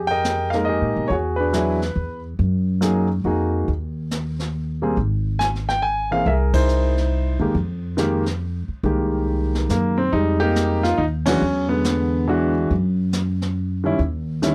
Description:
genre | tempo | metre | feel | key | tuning
jazz piano trio | 140 BPM | 3/4 | swing 65% on 8ths | unclear | A4 = 440 Hz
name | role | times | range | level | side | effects
warm concert grand piano | melody | 0.0-14.5 s | D3 to Ab5 | -23 LUFS | equal | none
upright bass | bass | 0.0-14.5 s | Ab1 to B2 | -25 LUFS | equal | none
jazz brush drum kit | drums | 0.2-14.5 s | brushed snare drum, hi-hat, kick drum, ride cymbal, snare drum | -30 LUFS | equal | none
room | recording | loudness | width
little or no reverb | none | -21 LUFS | mono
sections
0.0-10.1 A section; 10.1-14.5 A section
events
band accent 6.5, 11.2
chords
0.0 Fm11; 1.1 E9; 2.4 Gb69; 3.7 N.C.; 6.3 C7alt; 7.5 Fm11; 11.4 E9; 12.7 Gb5; 14.0 Eb7b9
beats
0.24 0.67 | 1.10 1.53 1.96 | 2.39 2.82 3.25 | 3.68 4.11 4.54 | 4.97 5.40 5.83 | 6.26 6.69 7.12 | 7.55 7.98 8.41 | 8.84 9.27 9.70 | 10.13 10.55 10.98 | 11.41 11.85 12.27 | 12.70 13.13 13.56 | 13.99 14.42

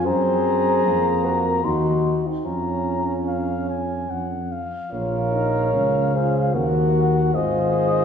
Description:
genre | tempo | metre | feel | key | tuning
classical, brass quintet | 74 BPM | 3/4 | rubato | Bb minor | A4 = 440 Hz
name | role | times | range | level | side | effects
dark trumpet | melody | 0.0-8.0 s | Eb5 to C6 | -26 LUFS | left 4 dB | none
mellow flugelhorn | second line | 0.0-8.0 s | C4 to Bb4 | -27 LUFS | right 3 dB | none
mellow French horn | accompaniment | 0.0-8.0 s | Eb4 to Db5 | -24 LUFS | left 2 dB | none
warm trombone | accompaniment | 0.0-8.0 s | Bb3 to Gb4 | -29 LUFS | right 2 dB | none
mellow tuba | bass | 0.0-8.0 s | Ab1 to Gb2 | -23 LUFS | right 1 dB | none
room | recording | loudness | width
wet scoring stage reverb, RT60 1.6 s | heard from further back in the room | -19 LUFS | side -7 dB against mid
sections
0.0-8.0 A section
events
none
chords
0.1 Gb; 1.6 Cdim/Eb; 2.5 Bbm/F; 4.9 Bbm; 6.5 Ebm; 7.3 Ab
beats
| 0.06 0.86 1.65 | 2.46 3.28 4.10 | 4.92 5.74 6.54 | 7.35

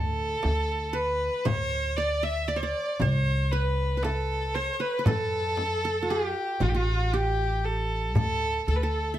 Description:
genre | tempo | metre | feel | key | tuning
Arabic maqam ensemble | 116 BPM (eighths) | 10/8 | straight | unclear | A4 = 441 Hz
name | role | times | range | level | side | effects
rich violin | melody | 0.0-9.2 s | F4+49c to E5 | -28 LUFS | equal | slapback echo
qanun | second line | 0.0-9.2 s | F#4-50c to E5 | -33 LUFS | right 4 dB | none
upright bass | bass | 0.0-9.2 s | A1 to F#2-50c | -29 LUFS | equal | none
darbuka | percussion | 0.4-8.8 s | none | -31 LUFS | left 3 dB | none
frame drum | percussion | 0.4-8.4 s | none | -32 LUFS | right 2 dB | none
room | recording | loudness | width
light reverb | close, detailed microphones | -24 LUFS | side -12 dB against mid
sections
0.0-9.2 A section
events
none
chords
none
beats
0.43 0.94 1.46 1.97 2.49 3.00 3.52 4.03 4.55 | 5.06 5.58 6.09 6.61 7.12 7.64 8.15 8.67 9.19

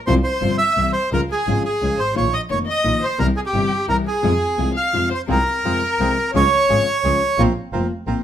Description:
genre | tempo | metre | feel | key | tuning
tango | 173 BPM | 3/4 | rubato | F minor | A4 = 440 Hz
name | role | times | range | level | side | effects
bandoneon | melody | 0.1-7.4 s | G4 to F5 | -20 LUFS | right 3 dB | none
warm violin | second line | 0.1-7.3 s | G4 to F5 | -25 LUFS | left 5 dB | none
nylon-string guitar | accompaniment | 0.1-8.2 s | C3 to F4 | -23 LUFS | left 5 dB | none
rich double bass | bass | 0.1-8.2 s | F1 to F2 | -23 LUFS | right 1 dB | none
bandoneon | stabs | 5.3-8.2 s | C4 to Bb4 | -30 LUFS | right 7 dB | none
room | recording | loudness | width
light reverb | minimal, uncompressed stereo recording | -16 LUFS | side -10 dB against mid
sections
0.0-8.2 A section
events
none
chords
0.1 Csus4; 0.8 C; 1.1 Db; 2.2 Bbsus4; 3.2 C; 4.2 Fm; 6.3 Db; 7.4 Bbsus2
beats
| 0.08 0.42 0.77 | 1.12 1.47 1.82 | 2.16 2.51 2.85 | 3.19 3.54 3.89 | 4.24 4.58 4.94 | 5.29 5.64 5.99 | 6.34 6.69 7.03 | 7.38 7.72 8.07

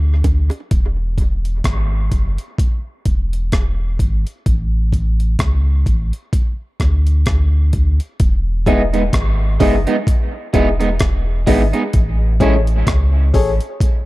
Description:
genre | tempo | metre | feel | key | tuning
dub reggae | 64 BPM | 4/4 | swing 57% on 16ths | E major | A4 = 438 Hz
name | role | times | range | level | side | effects
warm sub bass | bass | 0.0-13.6 s | E1 to D2 | -16 LUFS | equal | none
breakbeat sampler-style drum kit | drums | 0.2-14.1 s | hi-hat, kick drum, rim click | -17 LUFS | equal | none
bongos | percussion | 0.2-0.7, 9.6-9.9 s | none | -30 LUFS | right 6 dB | high-pass filter on perc, dub echo
electric guitar at the edge of break-up | accompaniment | 8.7-12.6 s | G#3 to E4 | -20 LUFS | right 3 dB | analog chorus, high-pass filter, dub echo
dark upright piano | stabs | 8.7-13.5 s | E4 to D#5 | -22 LUFS | left 4 dB | high-pass filter, dub echo
room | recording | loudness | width
digital ambience | dark, warm production | -14 LUFS | side -19 dB against mid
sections
0.0-8.2 A section; 8.2-14.1 B section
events
break 0.0-8.2; part muted 0.7-8.2, 8.2-14.1; filter sweep 11.9-14.1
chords
0.0 N.C.; 0.7 E; 4.5 A; 6.3 N.C.; 8.2 Emaj7; 11.9 Amaj7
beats
| 0.71 1.65 2.58 3.52 | 4.46 5.39 6.33 7.26 | 8.20 9.13 10.07 11.00 | 11.94 12.87 13.80

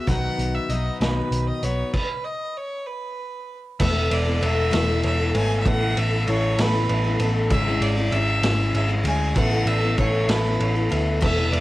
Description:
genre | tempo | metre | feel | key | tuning
folk rock and heartland rock | 65 BPM (dotted quarters) | 6/8 | straight | unclear | A4 = 441 Hz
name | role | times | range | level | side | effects
clear fiddle | melody | 0.0-11.6 s | B4 to G#5 | -27 LUFS | right 1 dB | cassette tape
picked steel-string acoustic guitar | accompaniment | 0.0-11.6 s | G#2 to B4 | -26 LUFS | left 3 dB | cassette tape
hollow-body short-scale picked electric bass | bass | 0.1-11.6 s | E1 to D2 | -23 LUFS | equal | none
vintage drum kit | drums | 0.1-11.6 s | crash cymbal, hi-hat, kick drum, ride cymbal, snare drum | -26 LUFS | equal | cassette tape
warm upright piano | accompaniment | 3.8-11.6 s | G#4 to E5 | -34 LUFS | right 4 dB | cassette tape
tonewheel organ | sustained chords | 3.8-11.6 s | E4 to E5 | -39 LUFS | right 1 dB | none
room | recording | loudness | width
small room ambience | home recording on cassette | -19 LUFS | side -17 dB against mid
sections
0.0-3.8 A section; 3.8-11.6 B section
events
stop 1.9-3.8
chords
0.1 B; 1.9 N.C.; 3.8 Esus4; 5.7 Asus2; 7.5 C#m/G#; 9.4 Asus2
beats
| 0.08 1.01 | 1.94 2.88 | 3.81 4.73 | 5.66 6.59 | 7.52 8.44 | 9.37 10.30 | 11.22

